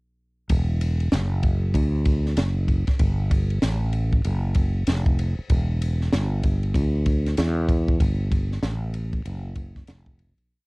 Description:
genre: hip hop, jazz-hop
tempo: 96 BPM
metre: 4/4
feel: swing 62% on 16ths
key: unclear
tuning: A4 = 440 Hz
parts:
  - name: sustaining fretless electric bass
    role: bass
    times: 0.5-10.4 s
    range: E1 to E2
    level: -22 LUFS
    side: equal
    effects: transformer saturation
  - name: compact cocktail drum kit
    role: drums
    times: 0.5-10.5 s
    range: hi-hat, kick drum, ride cymbal, snare drum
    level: -24 LUFS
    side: equal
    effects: cassette tape
room: little or no reverb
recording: home recording on cassette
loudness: -20 LUFS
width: side -30 dB against mid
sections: 0.5-10.5 head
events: fade-out 8.0-10.5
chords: none

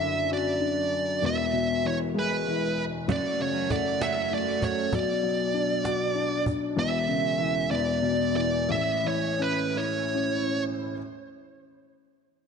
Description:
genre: six-eight pop ballad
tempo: 64 BPM (dotted quarters)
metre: 6/8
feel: uneven beats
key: A major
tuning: A4 = 438 Hz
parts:
  - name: high-gain lead guitar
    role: melody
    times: 0.0-10.6 s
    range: B4 to E5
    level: -28 LUFS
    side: right 2 dB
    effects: distortion, analog delay
  - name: felt-muted upright piano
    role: accompaniment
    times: 0.0-11.0 s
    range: E1 to F#4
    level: -28 LUFS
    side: left 3 dB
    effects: analog chorus
  - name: direct-recorded clean electric guitar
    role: arpeggios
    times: 3.1-4.9 s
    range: F#2 to F#4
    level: -33 LUFS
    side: right 10 dB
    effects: lush chorus
  - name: cajon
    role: drums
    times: 3.1-6.6 s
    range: none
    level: -32 LUFS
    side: right 2 dB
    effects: none
room: wet plate reverb, RT60 2.3 s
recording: dreamy mix soaked in reverb, nothing above 10.7 kHz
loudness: -24 LUFS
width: side -6 dB against mid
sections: 0.0-11.0 A section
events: slowing down 6.8-11.0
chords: 0.0 Dadd9/F#; 1.2 E; 3.1 F#m; 4.9 Bm; 6.8 C#m/E; 7.7 E5; 8.7 A

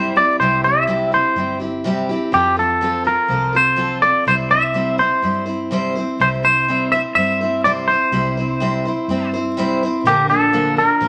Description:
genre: honky-tonk and classic country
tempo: 124 BPM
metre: 4/4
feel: straight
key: C mixolydian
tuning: A4 = 439 Hz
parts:
  - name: twangy electric guitar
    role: melody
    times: 0.0-11.1 s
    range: G4 to E5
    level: -18 LUFS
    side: equal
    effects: none
  - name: picked steel-string acoustic guitar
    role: accompaniment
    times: 0.0-11.1 s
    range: Bb2 to C5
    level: -23 LUFS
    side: equal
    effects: none
  - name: vintage muted fingered electric bass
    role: bass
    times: 0.0-11.1 s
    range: G1 to G2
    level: -30 LUFS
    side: equal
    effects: none
room: wet studio reverb, RT60 0.8 s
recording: vinyl crackle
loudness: -17 LUFS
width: mono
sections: 0.0-11.1 A section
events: none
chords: 0.0 C; 2.3 F; 4.3 C; 10.1 Bb

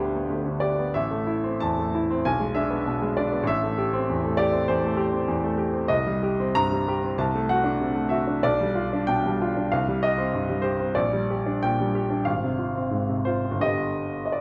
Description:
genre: classical, romantic character piece for solo piano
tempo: 84-100 BPM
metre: 4/4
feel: rubato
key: C minor from 5.9 s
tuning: A4 = 440 Hz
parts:
  - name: clear grand piano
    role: solo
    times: 0.0-14.4 s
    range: G1 to Bb5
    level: -25 LUFS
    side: equal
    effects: none
room: moderate recital hall reverb, RT60 1.5 s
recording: dark, warm production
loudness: -25 LUFS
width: mono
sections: 0.0-14.4 A section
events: none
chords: 0.0 G; 0.9 Am; 2.2 G#dim/B; 3.4 Am7; 5.9 Cm; 7.2 D7/C; 8.4 G7/B; 9.7 Cm; 11.0 Gm/Bb; 12.3 Fm/Ab; 13.6 G

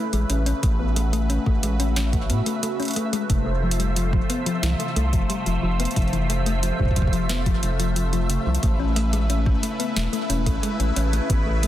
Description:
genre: IDM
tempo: 90 BPM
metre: 4/4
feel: straight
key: unclear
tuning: A4 = 442 Hz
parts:
  - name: phased analog pad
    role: sustained chords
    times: 0.0-11.7 s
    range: C3 to C5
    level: -28 LUFS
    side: equal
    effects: phaser, chorus
  - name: thumb-piano-like synth pluck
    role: arpeggios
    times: 0.0-11.7 s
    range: C3 to C#4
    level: -27 LUFS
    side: left 3 dB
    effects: chorus, digital delay
  - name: flickering grainy texture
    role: texture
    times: 0.0-11.7 s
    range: E5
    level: -35 LUFS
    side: right 1 dB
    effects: built-in reverb, sidechain pumping
  - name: round analog bass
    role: bass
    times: 0.1-11.7 s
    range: E1 to A2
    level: -23 LUFS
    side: equal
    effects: none
  - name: electro analog drum machine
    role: drums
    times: 0.1-11.7 s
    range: hi-hat, snare drum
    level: -30 LUFS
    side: right 1 dB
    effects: small room ambience
  - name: electronic kick drum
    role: drums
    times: 0.6-11.4 s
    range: none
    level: -23 LUFS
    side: equal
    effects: small room ambience
room: light reverb, digital ambience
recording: dense, heavily limited modern master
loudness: -20 LUFS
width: side -13 dB against mid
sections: 0.0-11.7 A section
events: none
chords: 0.0 Aadd9; 3.3 F; 8.6 Aadd9

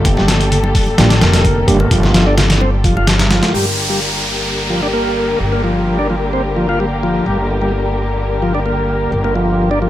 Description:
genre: breakbeat, breaks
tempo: 129 BPM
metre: 4/4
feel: straight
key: G minor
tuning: A4 = 440 Hz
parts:
  - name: dark studio string section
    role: sustained chords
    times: 0.0-9.9 s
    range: D3 to Bb4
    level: -20 LUFS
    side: left 2 dB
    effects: sidechain pumping
  - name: upright bass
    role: bass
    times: 0.0-9.9 s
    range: F1 to A1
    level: -18 LUFS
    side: equal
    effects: low-pass filter
  - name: dusty soul sampler-style drum kit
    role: drums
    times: 0.0-3.5 s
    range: hi-hat, kick drum, snare drum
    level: -14 LUFS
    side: equal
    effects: overdrive
  - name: congas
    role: percussion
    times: 0.1-3.3 s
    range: none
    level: -23 LUFS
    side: right 1 dB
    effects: none
  - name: tonewheel organ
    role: riff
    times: 0.2-9.9 s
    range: F3 to F4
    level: -18 LUFS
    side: equal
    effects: slow rotary speaker, low-pass filter, dub echo
  - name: tine electric piano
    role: stabs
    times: 1.0-1.8 s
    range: G3 to G4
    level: -22 LUFS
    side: right 3 dB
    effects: none
  - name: downlifter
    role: sound effects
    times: 3.5-7.3 s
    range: none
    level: -21 LUFS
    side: equal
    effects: none
room: light reverb, digital ambience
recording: none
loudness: -12 LUFS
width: side -13 dB against mid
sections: 0.0-3.5 A section; 3.5-9.9 B section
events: none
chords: 0.0 Gm

